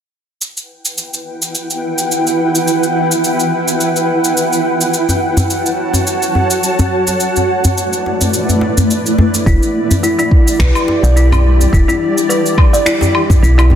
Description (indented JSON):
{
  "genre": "organic downtempo",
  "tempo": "106 BPM",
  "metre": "4/4",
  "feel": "swing 55% on 16ths",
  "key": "E dorian",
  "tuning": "A4 = 441 Hz",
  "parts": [
    { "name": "granular cloud pad", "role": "sustained chords", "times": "1.1-13.8 s", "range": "A3 to A5", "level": "-15 LUFS", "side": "equal", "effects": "built-in reverb, sidechain pumping" },
    { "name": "electronic shaker, finger snaps and woodblock", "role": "drums", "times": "0.4-13.7 s", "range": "none", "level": "-19 LUFS", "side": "equal", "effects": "soft clipping on snare" },
    { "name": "djembe", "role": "percussion", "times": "5.1-13.8 s", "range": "none", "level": "-16 LUFS", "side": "left 1 dB", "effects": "none" },
    { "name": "kalimba", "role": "arpeggios", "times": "9.5-13.7 s", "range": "E4 to D5", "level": "-16 LUFS", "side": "left 1 dB", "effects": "low-pass filter, tape echo" },
    { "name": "woody FM bass", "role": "bass", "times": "9.5-13.8 s", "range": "E1 to B1", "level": "-10 LUFS", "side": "equal", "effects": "sidechain pumping" },
    { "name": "electronic kick drum", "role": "drums", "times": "9.5-13.4 s", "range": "none", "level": "-11 LUFS", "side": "equal", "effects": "none" }
  ],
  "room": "moderate lush hall reverb, RT60 1.9 s",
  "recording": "dense, heavily limited modern master",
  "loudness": "-11 LUFS",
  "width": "side -9 dB against mid",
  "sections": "0.4-9.5 A section; 9.5-13.8 B section",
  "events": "none",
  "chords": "0.4 Em; 4.9 F#m; 7.2 Asus4; 9.5 Em7",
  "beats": "| 0.41 0.97 1.54 2.10 | 2.67 3.24 3.80 4.37 | 4.93 5.50 6.07 6.63 | 7.20 7.76 8.33 8.90 | 9.46 10.03 10.60 11.16 | 11.73 12.29 12.86 13.43"
}